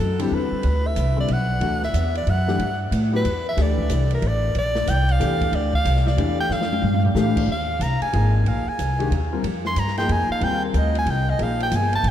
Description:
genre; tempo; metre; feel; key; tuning
modal jazz; 184 BPM; 3/4; swing 64% on 8ths; Bb mixolydian from 7.5 s; A4 = 440 Hz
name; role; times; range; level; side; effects
clear soprano saxophone; melody; 0.0-12.1 s; G4 to C6; -25 LUFS; equal; tape echo
upright bass; bass; 0.0-12.1 s; G1 to A2; -21 LUFS; equal; none
warm concert grand piano; accompaniment; 0.2-12.1 s; D3 to Bb4; -28 LUFS; left 5 dB; analog chorus
open jazz drum kit; drums; 0.2-12.1 s; crash cymbal, hi-hat, kick drum, ride cymbal, snare drum, toms; -31 LUFS; equal; none
room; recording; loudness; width
moderate cathedral reverb, RT60 5.3 s; dreamy mix soaked in reverb; -19 LUFS; side -10 dB against mid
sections
0.0-7.5 A section; 7.5-12.1 A section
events
soprano saxophone solo 0.0-12.1; drum fill 6.5-7.2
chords
0.0 Gmaj9; 3.6 Bbmaj9 (rootless); 7.5 Bb9sus4

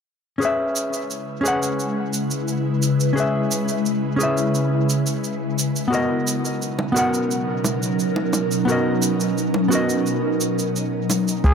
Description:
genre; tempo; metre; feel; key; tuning
sunset chillout; 87 BPM; 4/4; straight; C# dorian; A4 = 440 Hz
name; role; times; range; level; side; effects
hollow-body jazz guitar; accompaniment; 0.4-11.4 s; B3 to F#5; -23 LUFS; left 1 dB; auto-pan, analog delay, shimmer reverb
ethereal airy pad; sustained chords; 1.2-11.5 s; B2 to B4; -22 LUFS; equal; ensemble chorus, built-in reverb, phaser, shimmer reverb
cabasa; drums; 0.4-11.5 s; none; -28 LUFS; right 4 dB; none
bongos; percussion; 6.8-11.2 s; none; -25 LUFS; right 1 dB; none
round analog bass; bass; 11.4-11.5 s; C#2; -13 LUFS; equal; none
electronic kick drum; drums; 11.4-11.5 s; none; -20 LUFS; equal; none
clear flugelhorn; melody; 11.5 s; G#4; -22 LUFS; equal; none
room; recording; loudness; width
wet spring reverb, RT60 2.8 s; echo-heavy mix; -19 LUFS; side -6 dB against mid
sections
0.4-11.4 A section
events
none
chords
0.4 C#m7; 5.9 Bmaj7

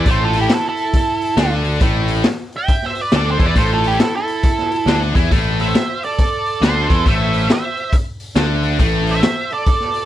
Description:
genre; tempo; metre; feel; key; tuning
blues rock power trio and southern rock; 137 BPM; 4/4; swing 63% on 8ths; A minor; A4 = 441 Hz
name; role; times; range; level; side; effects
octave-fuzz lead guitar; melody; 0.0-10.1 s; G4 to G5; -21 LUFS; right 1 dB; distortion, slapback echo
smooth overdriven lead guitar; second line; 0.0-10.1 s; E4 to E5; -25 LUFS; right 7 dB; none
tight distorted guitar; riff; 0.0-9.2 s; A2 to E4; -20 LUFS; left 2 dB; distortion
fuzz picked electric bass; bass; 0.0-9.2 s; A1 to E2; -19 LUFS; equal; overdrive
raw garage drum kit; drums; 0.1-10.0 s; hi-hat, kick drum, snare drum; -18 LUFS; equal; none
room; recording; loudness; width
little or no reverb; none; -14 LUFS; side -12 dB against mid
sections
0.0-10.1 A section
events
none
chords
0.0 Am

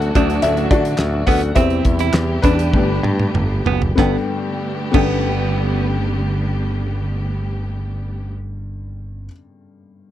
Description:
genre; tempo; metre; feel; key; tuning
piano-driven pop; 94-109 BPM; 4/4; straight; G major; A4 = 440 Hz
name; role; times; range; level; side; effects
felt-muted upright piano; accompaniment; 0.0-10.1 s; G2 to A5; -21 LUFS; left 5 dB; none
warm studio string section; sustained chords; 0.0-8.3 s; A2 to G4; -26 LUFS; right 2 dB; none
picked electric bass; bass; 0.0-9.3 s; F#1 to D3; -21 LUFS; equal; none
damped 70s drum kit; drums; 0.0-5.1 s; crash cymbal, handclaps, hi-hat, kick drum, snare drum, toms; -19 LUFS; equal; none
direct-recorded clean electric guitar; riff; 0.2-5.9 s; B3 to E4; -22 LUFS; right 13 dB; none
room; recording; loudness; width
little or no reverb; dry, close 1970s-style studio recording; -16 LUFS; side -12 dB against mid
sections
0.0-4.0 A section; 4.0-9.1 B section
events
slowing down 0.0-4.0; felt piano solo 0.0-4.0; drum fill 2.7-4.0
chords
0.0 D; 1.6 C/E; 2.7 Gadd9

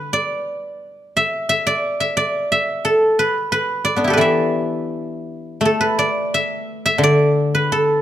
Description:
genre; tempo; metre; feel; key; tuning
chinese traditional, Chinese solo plucked strings; 83-91 BPM; 2/4; rubato; E yu mode; A4 = 440 Hz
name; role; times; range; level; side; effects
guzheng; solo; 0.0-8.0 s; D3 to E5; -16 LUFS; equal; none
room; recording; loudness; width
light reverb; close, detailed microphones; -16 LUFS; side -11 dB against mid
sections
0.0-5.6 A section; 5.6-8.0 B section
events
none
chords
none

